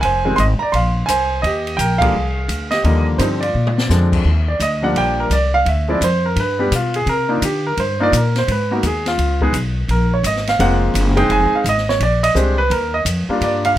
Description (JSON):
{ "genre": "jazz piano trio", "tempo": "170 BPM", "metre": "4/4", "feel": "swing 64% on 8ths", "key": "Eb major", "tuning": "A4 = 443 Hz", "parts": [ { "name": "clear grand piano", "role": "melody", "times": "0.0-13.8 s", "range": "D3 to C6", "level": "-17 LUFS", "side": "right 1 dB", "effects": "none" }, { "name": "upright bass", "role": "bass", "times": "0.0-13.8 s", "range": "F1 to D3", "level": "-18 LUFS", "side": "equal", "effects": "none" }, { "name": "open jazz drum kit", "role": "drums", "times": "0.0-13.7 s", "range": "crash cymbal, hi-hat, kick drum, ride cymbal, snare drum, toms", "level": "-26 LUFS", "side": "left 1 dB", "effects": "none" } ], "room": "little or no reverb", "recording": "close, detailed microphones", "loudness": "-14 LUFS", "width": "side -13 dB against mid", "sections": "0.0-4.3 A section; 4.3-13.8 B section", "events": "band accent 2.0; drum fill 3.5-3.9; grand piano solo 4.3-13.8", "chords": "0.0 Fm7; 0.7 Bbsus2; 1.4 Ebmaj7; 3.5 Bb9; 4.3 Ebmaj7; 5.7 Dm7; 6.4 G; 7.1 C7sus2; 8.5 Abm; 9.2 Db5; 9.9 Gbmaj9#11; 11.3 Fm7; 12.0 Bb13; 12.7 Ebmaj7" }